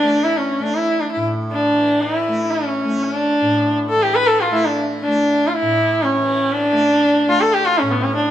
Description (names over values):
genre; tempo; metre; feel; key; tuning
indian classical, Hindustani; 119 BPM; 7/4; straight; A major; A4 = 439 Hz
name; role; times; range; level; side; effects
warm sarangi; melody; 0.0-8.3 s; B3 to B4; -15 LUFS; equal; none
tanpura; drone; 0.0-8.3 s; A2 to A3; -26 LUFS; equal; none
room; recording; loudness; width
moderate recital hall reverb, RT60 1.8 s; close, detailed microphones; -15 LUFS; side -11 dB against mid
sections
0.0-8.3 A section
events
none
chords
none